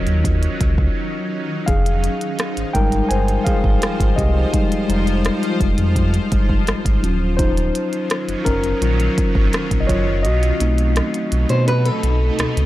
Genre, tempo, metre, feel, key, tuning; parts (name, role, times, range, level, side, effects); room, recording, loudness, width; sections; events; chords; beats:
contemporary R&B; 84 BPM; 4/4; straight; A4 = 440 Hz
mellow tine electric piano; accompaniment; 0.0-12.7 s; Gb3 to Ab5; -22 LUFS; left 2 dB; fast stereo tremolo
granular cloud pad; sustained chords; 0.0-12.7 s; B2 to C5; -26 LUFS; right 1 dB; built-in reverb, tremolo
sub bass with octave; bass; 0.0-12.7 s; Eb1 to B2; -19 LUFS; equal
glitchy drum kit; drums; 0.1-12.7 s; hi-hat, kick drum, rim click; -20 LUFS; equal
nylon-string guitar; arpeggios; 11.5-12.7 s; A4 to C5; -22 LUFS; equal
digital ambience; dry, gritty hardware recording, transformer saturation; -16 LUFS; side -15 dB against mid
0.0-12.7 A section
tine electric piano solo 0.0-12.7; break 1.0-1.7; kick muted 10.2-12.7
0.0 Ebm9; 1.7 Fm9; 7.0 Ebm9; 10.2 B7b9
0.25 0.96 | 1.68 2.39 3.10 3.82 | 4.53 5.25 5.96 6.68 | 7.39 8.11 8.82 9.53 | 10.25 10.96 11.68 12.39